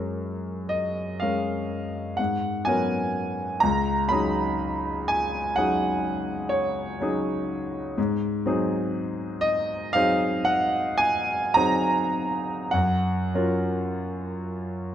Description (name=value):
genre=classical, impressionist solo piano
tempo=32-43 BPM (dotted quarters)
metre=9/8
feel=rubato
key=F# major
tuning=A4 = 439 Hz
part: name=clear grand piano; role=solo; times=0.0-14.9 s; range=C#2 to B5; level=-23 LUFS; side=equal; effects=none
room=light reverb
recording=close, detailed microphones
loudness=-23 LUFS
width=side -10 dB against mid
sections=0.0-14.9 A section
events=none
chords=0.0 F#maj9; 2.2 G#m11; 3.6 C#9sus4; 8.0 G#9; 12.7 F#maj7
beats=0.70 2.19 | 3.63 5.10 6.51 | 7.97 9.43 10.99 | 12.73 14.54